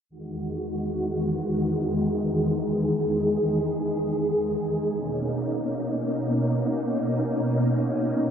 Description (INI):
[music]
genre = chillout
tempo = free time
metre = none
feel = none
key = E lydian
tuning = A4 = 440 Hz
[part]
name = soft string machine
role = sustained chords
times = 0.1-8.3 s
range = E2 to G#4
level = -23 LUFS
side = equal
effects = ensemble chorus
[sound]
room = moderate plate reverb, RT60 2.6 s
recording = dark, warm production, low-pass filter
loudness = -23 LUFS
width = side -8 dB against mid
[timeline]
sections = 0.1-8.3 A section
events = filter sweep 0.1-8.3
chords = 0.1 Emaj9; 4.9 Bmaj9